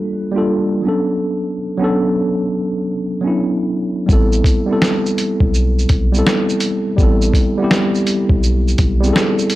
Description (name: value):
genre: lo-fi hip hop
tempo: 83 BPM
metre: 4/4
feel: swing 64% on 16ths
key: A dorian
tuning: A4 = 440 Hz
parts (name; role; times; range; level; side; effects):
- tine electric piano; accompaniment; 0.0-9.6 s; F#3 to A4; -16 LUFS; equal; medium stereo tremolo, cassette tape
- soft dub sub bass; bass; 4.1-9.1 s; A1 to B1; -16 LUFS; equal; tube saturation
- lo-fi sampler-style drum kit; drums; 4.1-9.6 s; finger snaps, hi-hat, kick drum, shaker, snare drum; -16 LUFS; equal; overdrive
room: light reverb, digital ambience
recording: dry, gritty hardware recording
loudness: -14 LUFS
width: side -16 dB against mid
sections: 0.0-9.6 A section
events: none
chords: 0.0 Gm9; 0.8 Bm9; 4.1 Am9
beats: 0.48 | 1.20 1.92 2.64 3.37 | 4.09 4.81 5.54 6.26 | 6.98 7.71 8.43 9.15